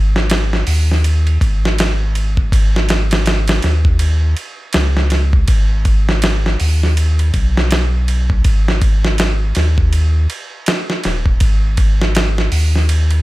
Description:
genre	trip hop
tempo	81 BPM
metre	4/4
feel	swing 59% on 16ths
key	G# minor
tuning	A4 = 440 Hz
part	warm sub bass	bass	0.0-13.2 s	D#1 to D#2	-14 LUFS	equal	none
part	dusty soul sampler-style drum kit	drums	0.2-13.2 s	hi-hat, kick drum, ride cymbal, snare drum	-16 LUFS	equal	none
room	little or no reverb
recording	none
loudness	-12 LUFS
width	side -18 dB against mid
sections	0.0-13.2 A section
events	none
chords	none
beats	0.30 1.04 1.78 | 2.52 3.26 4.00 4.75 | 5.49 6.23 6.97 7.71 | 8.45 9.19 9.93 10.67 | 11.41 12.15 12.89

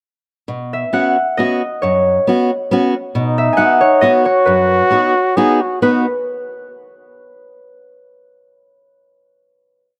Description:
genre	alpine folk, alpine dance band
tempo	136 BPM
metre	3/4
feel	swing 54% on 8ths, rubato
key	B major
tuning	A4 = 439 Hz
part	picked steel-string acoustic guitar	accompaniment	0.5-6.0 s	F#2 to F#4	-19 LUFS	equal	none
part	concert harp	melody	0.7-6.2 s	B4 to G#5	-18 LUFS	equal	none
part	dark trumpet	second line	3.2-6.0 s	D#4 to G#4	-18 LUFS	equal	none
room	light reverb, small room ambience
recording	rough home demo mix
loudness	-15 LUFS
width	mono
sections	0.5-5.8 A section; 5.8-7.1 final chord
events	none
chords	0.5 Bsus2; 3.2 B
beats	| 0.50 0.95 1.40 | 1.84 2.28 2.73 | 3.16 3.60 4.03 | 4.47 4.92 5.37 | 5.83

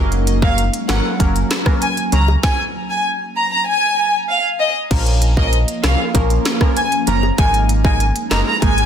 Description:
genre	dancehall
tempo	97 BPM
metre	4/4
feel	straight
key	Bb minor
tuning	A4 = 440 Hz
part	synth brass stab	accompaniment	0.0-8.9 s	F3 to Bb4	-23 LUFS	right 2 dB	chorus, phaser
part	ethereal airy pad	sustained chords	0.1-8.9 s	F3 to Eb4	-26 LUFS	right 1 dB	ensemble chorus, built-in reverb, sidechain pumping
part	sub bass with octave	bass	0.0-8.9 s	Gb1 to Db2	-17 LUFS	equal	none
part	island pop drum kit	drums	0.1-8.9 s	crash cymbal, hi-hat, kick drum, rim click, snare drum	-18 LUFS	equal	none
part	warm studio violin section	melody	0.4-8.9 s	Eb5 to Bb5	-19 LUFS	equal	ping-pong delay
part	bongos	percussion	0.9-8.8 s	none	-29 LUFS	left 9 dB	none
room	digital ambience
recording	dense, heavily limited modern master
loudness	-14 LUFS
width	side -8 dB against mid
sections	0.0-4.9 A section; 4.9-8.9 A section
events	none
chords	0.0 Gb; 2.4 N.C.; 4.9 Bbm; 7.4 Absus2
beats	0.58 1.20 1.82 | 2.44 3.05 3.67 4.29 | 4.91 5.53 6.15 6.76 | 7.38 8.00 8.62

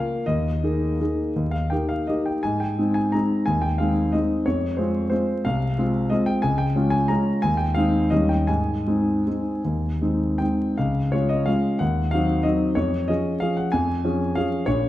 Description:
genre	classical, piano waltz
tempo	148-200 BPM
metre	3/4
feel	rubato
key	Ab major, Db major from 10.8 s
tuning	A4 = 440 Hz
part	warm concert grand piano	solo	0.0-14.9 s	Bb1 to Bb5	-20 LUFS	equal	none
room	wet recital hall reverb, RT60 1.4 s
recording	dark, warm production, vinyl crackle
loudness	-20 LUFS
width	side -14 dB against mid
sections	0.0-10.8 A section; 10.8-14.9 B section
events	none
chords	0.3 Ebsus4; 1.4 Eb; 2.4 Ab; 4.5 Fm; 6.4 Bbm7/Db; 7.4 Ab/Eb; 8.1 Eb7; 8.5 Ab; 10.8 Db; 11.8 Cdim/Eb; 12.8 Db/F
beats	| 0.27 0.63 1.00 | 1.35 1.71 2.09 | 2.44 2.78 3.14 | 3.47 3.79 4.13 | 4.47 4.79 5.11 | 5.46 5.79 6.11 | 6.44 6.75 7.10 | 7.43 7.76 8.11 | 8.48 8.87 9.27 | 9.64 10.02 10.40 | 10.79 11.13 11.48 | 11.80 12.12 12.44 | 12.77 13.09 13.41 | 13.73 14.04 14.36 | 14.67

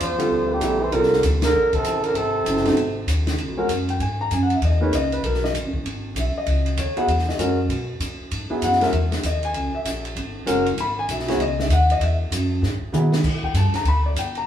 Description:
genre	modal jazz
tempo	195 BPM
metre	4/4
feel	swing 62% on 8ths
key	C# dorian from 3.4 s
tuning	A4 = 435 Hz
part	breathy trumpet	melody	0.0-3.1 s	G4 to C5	-22 LUFS	equal	none
part	bright trombone	second line	0.0-3.1 s	Bb2 to F3	-26 LUFS	right 2 dB	none
part	upright bass	bass	0.0-14.5 s	E1 to B2	-23 LUFS	equal	none
part	open jazz drum kit	drums	0.0-14.4 s	crash cymbal, hi-hat, kick drum, ride cymbal, snare drum, toms	-28 LUFS	right 1 dB	none
part	warm concert grand piano	accompaniment	0.2-14.5 s	D3 to B5	-23 LUFS	left 1 dB	none
room	moderate stone room reverb, RT60 1.3 s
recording	band playing live in one room, small room ambience, faint mains hum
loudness	-19 LUFS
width	side -10 dB against mid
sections	0.0-3.4 A section; 3.4-13.2 B section; 13.2-14.5 B section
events	band accent 1.4; drum fill 12.6-13.2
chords	0.0 C9sus4; 2.2 G#7b9; 3.4 C#m11; 12.0 Eadd9; 13.2 A9sus4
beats	0.00 0.31 0.61 | 0.92 1.23 1.54 1.84 | 2.15 2.46 2.77 3.08 | 3.38 3.69 4.00 4.31 | 4.62 4.92 5.23 5.54 | 5.85 6.16 6.47 6.78 | 7.08 7.39 7.70 8.01 | 8.32 8.62 8.93 9.24 | 9.55 9.86 10.16 10.47 | 10.78 11.09 11.40 11.70 | 12.01 12.32 12.63 12.94 | 13.24 13.55 13.86 14.17

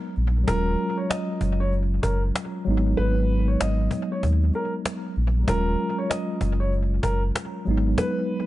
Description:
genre	hip hop, boom-bap hip-hop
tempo	96 BPM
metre	4/4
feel	swing 60% on 16ths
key	Eb minor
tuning	A4 = 440 Hz
part	mellow tine electric piano	accompaniment	0.0-8.5 s	Gb3 to F4	-27 LUFS	equal	medium stereo tremolo, cassette tape, high-pass filter, low-pass filter, analog delay
part	sub bass with octave	bass	0.2-8.0 s	Eb1 to Eb2	-22 LUFS	equal	none
part	cajon	drums	0.2-8.2 s	none	-30 LUFS	equal	analog delay
part	dark upright piano	melody	0.5-8.5 s	Bb4 to Eb5	-30 LUFS	equal	high-pass filter, low-pass filter, analog delay
room	small room ambience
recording	echo-heavy mix, nothing above 10.6 kHz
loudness	-22 LUFS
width	side -16 dB against mid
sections	0.0-8.5 A section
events	none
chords	0.5 Ebm11; 2.7 Abm7; 5.5 Ebm11; 7.7 Abm7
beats	| 0.48 1.10 1.73 2.35 | 2.98 3.60 4.23 4.85 | 5.48 6.10 6.73 7.35 | 7.98

